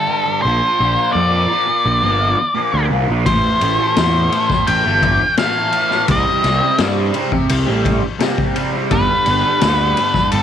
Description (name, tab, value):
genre	psychedelic rock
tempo	85 BPM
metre	4/4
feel	straight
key	A minor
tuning	A4 = 444 Hz
part	octave-fuzz lead guitar	melody	0.0-10.4 s	A4 to G5	-16 LUFS	left 1 dB	distortion, slapback echo
part	fuzz guitar	riff	0.0-10.4 s	G2 to C4	-20 LUFS	right 1 dB	distortion, phaser
part	fuzz picked electric bass	bass	0.5-10.4 s	G1 to G2	-19 LUFS	right 1 dB	overdrive
part	raw garage drum kit	drums	3.3-10.4 s	kick drum, ride cymbal, snare drum	-20 LUFS	left 4 dB	none
room	light reverb, small room ambience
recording	1960s-style stereo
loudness	-13 LUFS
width	side -9 dB against mid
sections	0.0-10.4 A section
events	none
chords	0.4 Bb; 3.3 Am; 6.1 Cm; 8.9 G